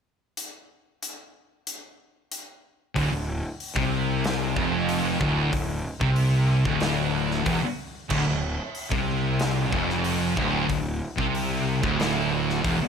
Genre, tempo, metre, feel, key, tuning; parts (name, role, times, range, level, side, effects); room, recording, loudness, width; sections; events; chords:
stoner and doom metal; 93 BPM; 4/4; straight; D minor; A4 = 440 Hz
big rock drum kit; drums; 0.4-12.8 s; crash cymbal, hi-hat, kick drum, snare drum; -31 LUFS; equal
sludgy distorted guitar; riff; 3.0-12.8 s; D2 to C3; -31 LUFS; right 3 dB; overdrive
thick fuzz guitar; riff; 3.0-12.8 s; D2 to C3; -27 LUFS; left 7 dB; distortion
thick fuzz guitar; riff; 3.0-12.8 s; D2 to C3; -28 LUFS; right 11 dB; distortion
fuzz fingered electric bass; bass; 3.0-12.8 s; D1 to C2; -30 LUFS; equal; overdrive
light reverb, studio reverb; -22 LUFS; side -6 dB against mid
0.4-3.0 A section; 3.0-12.9 B section
0.4 N.C.; 3.0 Dm